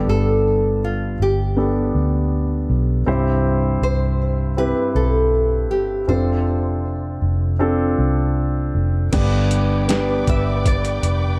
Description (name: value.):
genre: pop ballad.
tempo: 79 BPM.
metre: 4/4.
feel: straight.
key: unclear.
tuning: A4 = 440 Hz.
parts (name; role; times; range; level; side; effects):
nylon-string guitar; melody; 0.0-11.4 s; F4 to E5; -25 LUFS; equal; none.
warm concert grand piano; accompaniment; 0.0-11.4 s; G2 to C5; -24 LUFS; equal; none.
vintage muted fingered electric bass; bass; 0.0-11.4 s; F1 to D2; -22 LUFS; equal; none.
warm studio string section; sustained chords; 9.1-11.4 s; B4 to D6; -32 LUFS; equal; none.
boom bap sampler-style drum kit; drums; 9.1-11.2 s; crash cymbal, hi-hat, kick drum, snare drum; -25 LUFS; equal; none.
room: light reverb, small room ambience.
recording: dark, warm production.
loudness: -19 LUFS.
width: mono.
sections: 0.0-9.1 A section; 9.1-11.4 B section.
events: none.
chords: 0.0 Gadd9; 3.1 Cmaj7; 6.1 F6; 9.1 G.